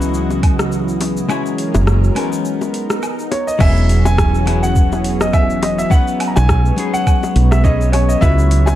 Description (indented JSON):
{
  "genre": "sunset chillout",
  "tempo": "104 BPM",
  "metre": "4/4",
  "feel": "swing 56% on 16ths",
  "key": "E lydian",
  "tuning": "A4 = 440 Hz",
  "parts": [
    { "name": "hollow-body jazz guitar", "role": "accompaniment", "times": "0.0-8.8 s", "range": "F#3 to C#5", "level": "-21 LUFS", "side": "moving between left 6 dB and right 4 dB", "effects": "auto-pan, digital delay" },
    { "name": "lush unison pad", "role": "sustained chords", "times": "0.0-8.8 s", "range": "C#3 to D#5", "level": "-22 LUFS", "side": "equal", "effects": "chorus" },
    { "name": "woody fretless electric bass", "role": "bass", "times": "0.0-8.8 s", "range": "E1 to C#2", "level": "-15 LUFS", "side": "equal", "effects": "none" },
    { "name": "deep house drum kit", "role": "drums", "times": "0.0-8.8 s", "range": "crash cymbal, hi-hat, rim click, shaker, woodblock", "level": "-24 LUFS", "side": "equal", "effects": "overdrive" },
    { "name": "bongos", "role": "percussion", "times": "0.3-8.8 s", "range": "none", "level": "-24 LUFS", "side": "left 4 dB", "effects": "none" },
    { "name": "electronic kick drum", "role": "drums", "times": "0.4-8.4 s", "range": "none", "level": "-14 LUFS", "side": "equal", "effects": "none" },
    { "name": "warm grand piano", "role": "melody", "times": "3.3-8.8 s", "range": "C#5 to A#5", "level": "-20 LUFS", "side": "right 1 dB", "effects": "tape echo" }
  ],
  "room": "light reverb",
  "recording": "dark, warm production",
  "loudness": "-13 LUFS",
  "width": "side -13 dB against mid",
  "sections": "0.0-3.6 A section; 3.6-8.8 B section",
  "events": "break 2.5-3.6",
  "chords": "0.0 C#m11; 1.3 F#9; 2.5 Bmaj13; 3.6 E69; 5.9 B69; 8.2 C#m11"
}